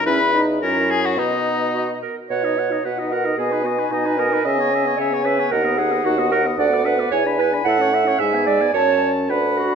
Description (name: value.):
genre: quick classical-period movement for wind quintet.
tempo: 111 BPM.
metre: 2/4.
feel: uneven beats, rubato.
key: B major.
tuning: A4 = 439 Hz.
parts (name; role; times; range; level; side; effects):
silver concert flute; melody; 0.0-9.8 s; D#5 to B5; -25 LUFS; left 9 dB; none.
clear oboe; second line; 0.0-9.8 s; D#4 to B5; -25 LUFS; left 3 dB; none.
clear French horn; accompaniment; 0.1-9.8 s; G#3 to F#4; -26 LUFS; equal; none.
clear clarinet; accompaniment; 0.1-9.8 s; C#4 to F#5; -21 LUFS; right 7 dB; none.
warm bassoon; bass; 0.1-9.7 s; D2 to C#3; -23 LUFS; right 2 dB; none.
room: wet recital hall reverb, RT60 1.6 s.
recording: none.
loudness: -17 LUFS.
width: side -6 dB against mid.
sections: 0.0-2.3 A section; 2.3-9.8 A section.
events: none.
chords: 0.1 C#m/E; 0.6 F#7; 1.2 B; 3.4 G#m/B; 4.5 C#m7; 5.5 B/D#; 6.6 Bm/D; 7.1 E7; 7.7 A; 8.2 E/G#; 8.7 F#m.